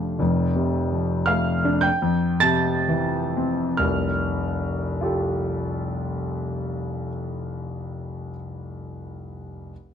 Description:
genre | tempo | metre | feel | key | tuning
classical, impressionist solo piano | 39-55 BPM | 3/4 | rubato | F major | A4 = 437 Hz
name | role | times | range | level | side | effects
warm grand piano | solo | 0.0-9.7 s | F1 to A6 | -22 LUFS | equal | none
room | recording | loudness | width
moderate studio reverb, RT60 0.8 s | dark, warm production | -21 LUFS | side -8 dB against mid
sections
0.2-3.8 A section; 3.8-7.5 B section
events
slowing down 0.0-3.8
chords
0.2 F; 1.8 Fmaj9; 3.8 Fadd9

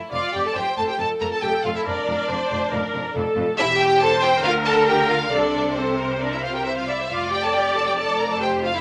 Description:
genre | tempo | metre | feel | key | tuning
quick classical-period movement for string orchestra | 137 BPM | 4/4 | rubato | F major | A4 = 442 Hz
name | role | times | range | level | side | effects
rich studio violin section | second line | 0.0-8.8 s | C4 to Bb4 | -28 LUFS | equal | none
rich studio violin section | melody | 0.1-8.8 s | C5 to Bb5 | -26 LUFS | equal | none
warm studio viola section | accompaniment | 0.1-8.8 s | G4 to D5 | -26 LUFS | equal | none
clear studio cello section | bass | 0.1-8.8 s | E2 to D3 | -34 LUFS | equal | none
rich studio double bass section | bass | 0.1-8.8 s | E1 to D2 | -36 LUFS | equal | none
room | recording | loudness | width
moderate large studio reverb, RT60 1.2 s | none | -21 LUFS | mono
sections
0.1-8.8 A section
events
none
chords
0.1 F; 3.6 C/E; 4.4 Bb/D; 5.3 Bbmaj9/C; 6.2 C9; 7.1 F5

